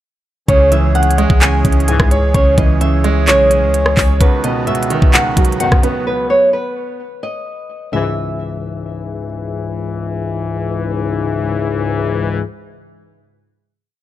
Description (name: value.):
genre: hip hop, trap.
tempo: 129 BPM.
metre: 4/4.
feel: half-time.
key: C# minor.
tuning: A4 = 439 Hz.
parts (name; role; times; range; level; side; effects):
flamenco guitar; melody; 0.5-9.3 s; B4 to G#5; -17 LUFS; equal; tape echo.
clear concert grand piano; accompaniment; 0.5-7.0 s; C#2 to C#5; -18 LUFS; right 4 dB; none.
accordion; sustained chords; 0.5-6.0 s; D#3 to C#5; -24 LUFS; right 1 dB; light tremolo tuning.
long sustained 808-style bass; bass; 0.5-4.2 s; B1 to C#2; -15 LUFS; equal; none.
trap drum kit; drums; 0.5-5.9 s; handclaps, hi-hat, kick drum, rim click; -13 LUFS; equal; none.
clear brass ensemble; stabs; 1.9-2.2, 5.6-12.4 s; B1 to E3; -19 LUFS; left 4 dB; none.
room: small room ambience.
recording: none.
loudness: -12 LUFS.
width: side -13 dB against mid.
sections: 0.5-7.9 hook; 7.9-11.6 final chord.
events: none.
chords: 0.5 C#m; 4.2 B; 7.9 C#m.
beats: | 0.48 0.95 1.42 1.88 | 2.35 2.81 3.28 3.74 | 4.21 4.67 5.14 5.60 | 6.07 6.53 7.00 7.46 | 7.93 8.39 8.86 9.32 | 9.79 10.25 10.72 11.18.